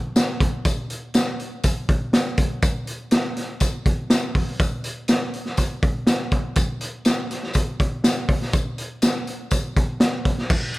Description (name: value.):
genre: soul.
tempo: 122 BPM.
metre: 4/4.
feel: straight.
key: none.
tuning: none.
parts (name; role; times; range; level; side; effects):
raw garage drum kit; drums; 0.2-10.8 s; crash cymbal, hi-hat, kick drum, ride cymbal, snare drum; -20 LUFS; equal; none.
tambourine; percussion; 0.2-10.6 s; none; -36 LUFS; left 4 dB; none.
room: light reverb.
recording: dark, warm production.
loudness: -20 LUFS.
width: side -20 dB against mid.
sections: 0.0-10.5 A section.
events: none.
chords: none.